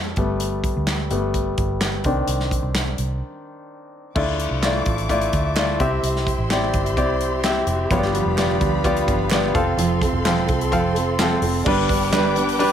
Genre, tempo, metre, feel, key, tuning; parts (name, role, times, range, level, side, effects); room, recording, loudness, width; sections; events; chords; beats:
piano-driven pop; 128 BPM; 4/4; straight; G mixolydian; A4 = 436 Hz
bright concert grand piano; accompaniment; 0.0-12.7 s; G2 to A5; -22 LUFS; left 2 dB
vintage muted fingered electric bass; bass; 0.0-12.7 s; E1 to F2; -25 LUFS; right 1 dB
modern studio drum kit; drums; 0.2-12.7 s; crash cymbal, handclaps, hi-hat, kick drum, snare drum; -24 LUFS; equal
warm studio string section; sustained chords; 4.2-12.7 s; F3 to D6; -29 LUFS; equal
group handclap; percussion; 4.6-12.2 s; -34 LUFS; right 8 dB
fingerpicked steel-string acoustic guitar; riff; 7.9-12.7 s; G2 to B4; -24 LUFS; right 6 dB
moderate large studio reverb, RT60 1.2 s, studio reverb; -18 LUFS; side -9 dB against mid
0.0-4.2 A section; 4.2-11.7 B section; 11.7-12.7 C section
grand piano solo 0.0-4.2; break 3.2-4.2
0.2 Gadd9; 2.0 Cmadd9; 4.2 Dmadd9; 5.8 C; 7.9 G7; 9.6 F; 11.7 G
| 0.41 0.88 1.34 1.81 | 2.28 2.75 3.22 3.69 | 4.16 4.63 5.10 5.57 | 6.04 6.50 6.97 7.44 | 7.91 8.38 8.85 9.32 | 9.79 10.26 10.73 11.20 | 11.66 12.13 12.60